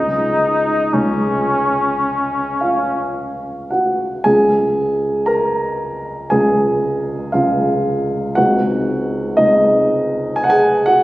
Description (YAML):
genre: classical, romantic duo for trumpet and grand piano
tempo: 51-61 BPM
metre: 4/4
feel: rubato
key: Db major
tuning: A4 = 440 Hz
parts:
  - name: warm trumpet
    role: melody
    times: 0.0-3.2 s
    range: Db4 to Eb4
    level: -17 LUFS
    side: left 1 dB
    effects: none
  - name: warm grand piano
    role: accompaniment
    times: 0.0-11.0 s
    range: Db2 to Bb5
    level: -15 LUFS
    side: equal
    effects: none
room: wet concert hall reverb, RT60 1.9 s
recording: recorded on a phone in the room, club reverb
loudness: -14 LUFS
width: side -17 dB against mid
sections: 0.0-4.3 A section; 4.3-11.0 A section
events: none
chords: 0.0 Db; 8.4 Ab7/Db